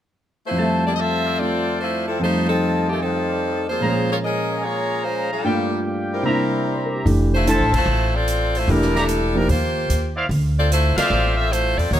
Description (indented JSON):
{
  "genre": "jazz, big band swing",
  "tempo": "148 BPM",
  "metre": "4/4",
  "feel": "swing 66% on 8ths",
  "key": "F major",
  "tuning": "A4 = 440 Hz",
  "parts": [
    { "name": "bright saxophone section", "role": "melody", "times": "0.5-12.0 s", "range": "Eb3 to E5", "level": "-22 LUFS", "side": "left 1 dB", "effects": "none" },
    { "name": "warm concert grand piano", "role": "accompaniment", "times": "0.5-9.5 s", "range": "F2 to E5", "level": "-22 LUFS", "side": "equal", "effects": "none" },
    { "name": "clear trumpet section", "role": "stabs", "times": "0.6-11.5 s", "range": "E4 to D6", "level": "-26 LUFS", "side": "equal", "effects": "none" },
    { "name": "upright bass", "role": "bass", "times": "7.1-12.0 s", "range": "E1 to E2", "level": "-20 LUFS", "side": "equal", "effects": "none" },
    { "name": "swinging big-band drum kit", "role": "drums", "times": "7.1-12.0 s", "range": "crash cymbal, hi-hat, kick drum, ride cymbal, snare drum", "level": "-30 LUFS", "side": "right 1 dB", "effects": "none" }
  ],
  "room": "light reverb",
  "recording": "close, detailed microphones",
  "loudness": "-18 LUFS",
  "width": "side -11 dB against mid",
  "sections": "0.6-7.1 A section; 7.1-12.0 B section",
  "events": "band accent 7.7, 10.9",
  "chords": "0.0 N.C.; 0.6 Fmaj7; 2.2 F7; 3.8 Bbm7; 5.4 Gm7; 6.3 C7; 7.1 Fmaj7; 8.7 Em7b5; 9.5 Eb69; 10.3 Dm9",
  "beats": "0.16 | 0.57 0.97 1.38 1.79 | 2.19 2.60 3.00 3.41 | 3.82 4.22 4.63 5.04 | 5.44 5.85 6.25 6.66 | 7.06 7.47 7.88 8.28 | 8.69 9.09 9.50 9.90 | 10.31 10.71 11.12 11.52 | 11.93"
}